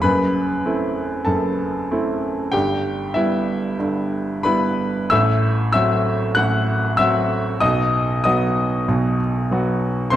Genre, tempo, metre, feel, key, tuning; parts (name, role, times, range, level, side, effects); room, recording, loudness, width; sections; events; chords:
classical, virtuoso piano study; 96 BPM; 4/4; rubato; A4 = 441 Hz
clear baby grand piano; solo; 0.0-10.2 s; F#1 to F#6; -17 LUFS; equal
wet recital hall reverb, RT60 1.6 s; -18 LUFS; side -12 dB against mid
0.0-10.2 A section
0.0 F#m7b5; 2.5 Em/G; 5.1 F#m7b5/A; 7.6 B